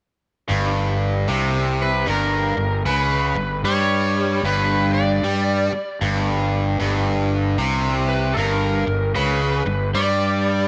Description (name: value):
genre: rock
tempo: 76 BPM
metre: 4/4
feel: swing 63% on 8ths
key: unclear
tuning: A4 = 442 Hz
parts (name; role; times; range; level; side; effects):
- biting overdriven guitar; riff; 0.5-10.7 s; G2 to G3; -24 LUFS; equal; none
- fuzz fingered electric bass; bass; 0.5-10.7 s; G1 to G2; -24 LUFS; equal; overdrive
- overdriven slide guitar; melody; 1.8-10.7 s; A4 to D5; -25 LUFS; equal; none
room: moderate echo chamber reverb, RT60 1.7 s, digital ambience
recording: none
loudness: -20 LUFS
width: mono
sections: 0.5-10.7 A section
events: none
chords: 0.5 G